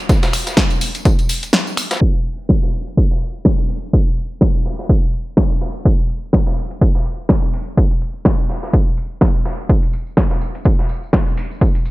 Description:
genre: house.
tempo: 125 BPM.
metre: 4/4.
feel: swing 56% on 16ths.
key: none.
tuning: none.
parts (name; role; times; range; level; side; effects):
dusty soul sampler-style drum kit; drums; 0.1-11.9 s; hi-hat, snare drum, tambourine; -28 LUFS; equal; high-pass filter on hats, low-pass filter on hats, studio reverb, high-pass filter on perc, low-pass filter on perc, high-pass filter on snare, low-pass filter on snare, high-pass filter on room, low-pass filter on room.
electronic kick drum; drums; 0.1-11.7 s; none; -15 LUFS; equal; studio reverb.
house drum kit; drums; 0.1-11.2 s; crash cymbal, finger snaps, hi-hat, snare drum; -20 LUFS; equal; studio reverb.
tambourine; percussion; 0.1-2.0, 9.7-11.9 s; none; -30 LUFS; right 2 dB; none.
room: little or no reverb.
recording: low-pass filter.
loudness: -14 LUFS.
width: side -20 dB against mid.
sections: 0.0-2.0 A section; 2.0-11.9 B section.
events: kick drops out 1.5-2.0; filter sweep 2.0-11.9.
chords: none.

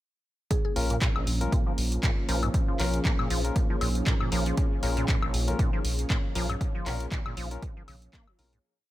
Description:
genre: acid house.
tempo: 118 BPM.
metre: 4/4.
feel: swing 56% on 16ths.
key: Bb minor.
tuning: A4 = 440 Hz.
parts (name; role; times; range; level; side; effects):
mallet-like synth pluck; melody; 0.5-0.7 s; Ab4; -38 LUFS; equal; chorus, dub echo.
warm analog pad; sustained chords; 0.5-8.6 s; F3 to Db4; -35 LUFS; right 1 dB; chorus, sidechain pumping.
electronic kick drum; drums; 0.5-8.2 s; none; -27 LUFS; equal; none.
punchy analog drum machine; drums; 0.5-8.6 s; handclaps, hi-hat, woodblock; -33 LUFS; left 1 dB; none.
ethereal airy pad; texture; 1.8-8.6 s; Eb4 to F5; -41 LUFS; left 4 dB; ensemble chorus, built-in reverb, phaser, sidechain pumping.
liquid acid bass; riff; 0.8-8.6 s; Bb1 to Bb3; -34 LUFS; right 1 dB; analog chorus, dub echo.
barky tine electric piano; stabs; 0.8-8.5 s; Db4 to Bb4; -37 LUFS; left 5 dB; dub echo.
warm sub bass; bass; 0.8-8.6 s; Bb1; -29 LUFS; equal; tube saturation, sidechain pumping.
room: digital ambience.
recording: none.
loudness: -25 LUFS.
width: side -15 dB against mid.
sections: 0.5-8.6 groove.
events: fade-in on ambient pad 0.5-8.6; fade-out 5.9-8.6.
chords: 0.5 Bbm.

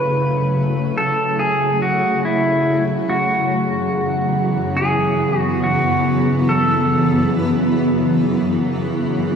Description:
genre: ambient.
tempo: 71 BPM.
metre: 4/4.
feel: straight.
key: F# minor.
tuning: A4 = 440 Hz.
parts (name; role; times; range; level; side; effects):
pedal steel guitar; melody; 0.0-7.3 s; E4 to B4; -19 LUFS; equal; shimmer reverb, ping-pong delay.
granular cloud pad; sustained chords; 0.0-9.4 s; F#2 to F#4; -20 LUFS; equal; built-in reverb.
organ-like drone; drone; 0.0-9.4 s; C#3 to F#3; -21 LUFS; equal; ensemble chorus, built-in reverb.
room: wet lush hall reverb, RT60 3.1 s.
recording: lossy compression artefacts.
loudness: -16 LUFS.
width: side -6 dB against mid.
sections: 0.0-9.4 A section.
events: fade-in on ambient pad 0.0-9.4.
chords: 0.0 F#m7; 3.1 F#7sus4.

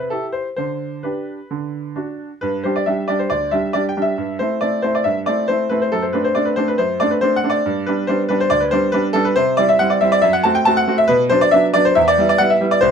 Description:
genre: classical-period piano sonatina.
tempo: 138 BPM.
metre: 4/4.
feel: rubato.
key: G major.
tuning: A4 = 440 Hz.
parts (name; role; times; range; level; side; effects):
bright baby grand piano; solo; 0.0-12.9 s; C2 to A5; -15 LUFS; equal; none.
room: moderate small room reverb, RT60 0.5 s.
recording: dark, warm production.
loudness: -15 LUFS.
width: side -7 dB against mid.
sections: 0.0-2.4 A section; 2.4-12.9 B section.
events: none.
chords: 0.0 Cmaj13; 0.6 G/D; 1.5 D; 2.4 G5; 4.2 Am7/G; 5.9 D7/F#; 7.7 G; 9.4 C; 10.2 F#dim; 11.1 Bm; 12.0 Em.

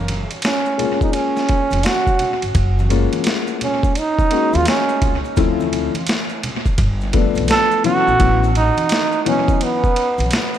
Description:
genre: hip hop, jazz-hop.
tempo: 85 BPM.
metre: 4/4.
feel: swing 64% on 16ths.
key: F# major.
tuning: A4 = 440 Hz.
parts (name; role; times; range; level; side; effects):
upright bass; bass; 0.0-10.3 s; E#1 to D#2; -20 LUFS; equal; none.
boom bap sampler-style drum kit; drums; 0.1-10.5 s; hi-hat, kick drum, ride cymbal, snare drum; -20 LUFS; equal; tape echo.
congas and maracas; percussion; 0.1-10.6 s; none; -31 LUFS; right 1 dB; none.
bright trombone; melody; 0.4-10.3 s; B3 to A4; -18 LUFS; right 3 dB; tape echo.
dark concert grand piano; accompaniment; 0.8-9.8 s; E3 to F#4; -21 LUFS; left 11 dB; none.
room: small room ambience.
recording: echo-heavy mix.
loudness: -15 LUFS.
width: side -10 dB against mid.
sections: 0.0-2.5 A section; 2.5-10.6 B section.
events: none.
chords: 0.0 F#maj9; 5.4 Dm7; 6.8 G9; 8.2 A69.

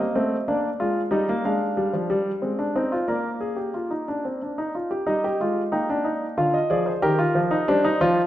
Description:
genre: classical, baroque-style 3-part fugue for grand piano.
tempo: 92 BPM.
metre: 3/4.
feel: straight.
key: Eb major.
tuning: A4 = 440 Hz.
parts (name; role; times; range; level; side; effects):
warm concert grand piano; solo; 0.0-8.3 s; D3 to G5; -21 LUFS; equal; none.
room: wet recital hall reverb, RT60 1.6 s.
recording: none.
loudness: -21 LUFS.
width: side -13 dB against mid.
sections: 0.0-5.1 A section; 5.1-8.3 B section.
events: none.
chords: 0.5 Bb; 1.1 Eb/G; 2.4 Ab; 3.1 Bb; 5.1 Eb/G; 6.4 Dm7b5; 7.0 Eb.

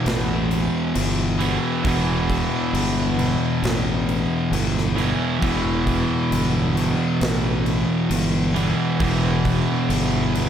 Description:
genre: stoner and doom metal.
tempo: 67 BPM.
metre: 4/4.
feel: straight.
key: E minor.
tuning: A4 = 440 Hz.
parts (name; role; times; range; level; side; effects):
biting overdriven guitar; riff; 0.0-10.5 s; E2 to E3; -27 LUFS; right 2 dB; none.
fuzz guitar; riff; 0.0-10.5 s; E2 to E3; -26 LUFS; right 9 dB; distortion.
thick fuzz guitar; riff; 0.0-10.5 s; E2 to E3; -23 LUFS; left 5 dB; distortion.
overdriven fingered electric bass; bass; 0.1-10.5 s; E1 to A1; -25 LUFS; equal; none.
big rock drum kit; drums; 0.1-10.5 s; crash cymbal, kick drum, snare drum; -29 LUFS; equal; none.
room: small room ambience.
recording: none.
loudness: -19 LUFS.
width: side -9 dB against mid.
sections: 0.0-10.5 A section.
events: none.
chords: 0.0 Em.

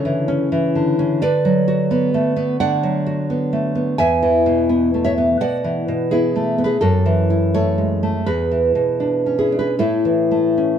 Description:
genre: romantic piece for solo classical guitar.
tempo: 75-87 BPM.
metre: 4/4.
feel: rubato.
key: unclear.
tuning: A4 = 444 Hz.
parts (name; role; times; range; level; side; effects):
nylon-string guitar; solo; 0.0-10.8 s; E2 to G#5; -16 LUFS; equal; none.
room: moderate studio reverb, RT60 0.9 s.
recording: band playing live in one room.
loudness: -16 LUFS.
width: side -8 dB against mid.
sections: 0.0-10.8 A section.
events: none.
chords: 0.0 A/C#; 1.2 Bm/D; 4.0 E; 6.8 F#m7; 8.3 E7; 9.8 A.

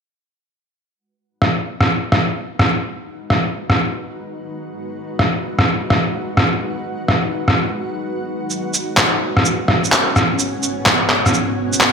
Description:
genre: future garage.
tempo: 127 BPM.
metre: 4/4.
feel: swing 66% on 16ths.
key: G# minor.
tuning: A4 = 440 Hz.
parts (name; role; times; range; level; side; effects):
granular cloud pad; sustained chords; 2.6-11.9 s; G#2 to F#5; -24 LUFS; equal; built-in reverb.
electronic rim click, shaker and handclaps; drums; 1.4-11.9 s; none; -15 LUFS; equal; none.
room: moderate lush hall reverb, RT60 1.7 s.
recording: none.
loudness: -15 LUFS.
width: side -6 dB against mid.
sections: 0.9-11.9 A section.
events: fade-in on ambient pad 0.9-11.9.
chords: 0.9 G#m7; 8.5 F#sus4/G#.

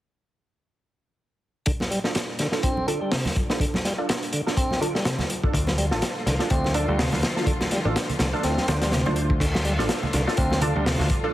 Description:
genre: breakbeat, breaks.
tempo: 124 BPM.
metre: 4/4.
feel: swing 57% on 16ths.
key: D minor pentatonic.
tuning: A4 = 442 Hz.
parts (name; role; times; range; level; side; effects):
tonewheel organ; riff; 1.7-11.0 s; C3 to C4; -29 LUFS; equal; overdrive, tube saturation, low-pass filter, digital delay.
crunchy breakbeat drum kit; drums; 1.7-11.2 s; crash cymbal, hi-hat, kick drum, snare drum; -25 LUFS; equal; none.
congas; percussion; 1.8-11.1 s; none; -33 LUFS; right 2 dB; none.
orchestra-hit-like synth stab; stabs; 2.0-11.3 s; D4 to C5; -30 LUFS; right 2 dB; built-in reverb, phaser, digital delay.
muted studio string section; sustained chords; 5.5-11.3 s; D3 to F4; -33 LUFS; left 1 dB; vintage 12-bit sampler grit, sidechain pumping.
picked electric bass; bass; 5.5-11.1 s; A1 to D2; -25 LUFS; equal; none.
room: moderate lush hall reverb, RT60 1.9 s.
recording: heavily compressed radio sound.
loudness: -21 LUFS.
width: side -14 dB against mid.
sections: 1.7-9.4 A section; 9.4-11.3 B section.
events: filter sweep on synth stab 1.7-9.4.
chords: 1.7 Dm.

